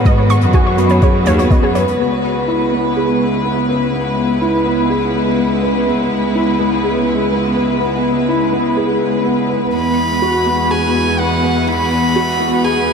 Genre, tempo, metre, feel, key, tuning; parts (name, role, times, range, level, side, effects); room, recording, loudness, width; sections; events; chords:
piano and strings electronica; 124 BPM; 4/4; straight; C# minor; A4 = 437 Hz
warm studio string section; sustained chords; 0.0-12.9 s; C#3 to B4; -20 LUFS; left 1 dB
felt-muted upright piano; riff; 0.0-12.9 s; B3 to B4; -16 LUFS; equal; ensemble chorus, ping-pong delay
bright studio cello section; bass; 0.0-12.9 s; C#2 to G#2; -20 LUFS; equal; sidechain pumping
wide unison pluck; arpeggios; 0.1-1.8 s; G#4 to C#6; -23 LUFS; right 2 dB; sidechain pumping, ping-pong delay
electronic kick drum; drums; 0.1-1.6 s; -13 LUFS; equal; overdrive
hi-hat; drums; 0.1-2.0 s; -34 LUFS; left 7 dB
warm violin; melody; 9.7-12.9 s; F#5 to B5; -17 LUFS; equal; ping-pong delay
wet huge ambient reverb, RT60 8.0 s; dreamy mix soaked in reverb; -13 LUFS; side -6 dB against mid
0.0-2.0 A section; 2.0-12.9 B section
0.1 G#m7; 2.0 C#m7; 9.7 Eadd9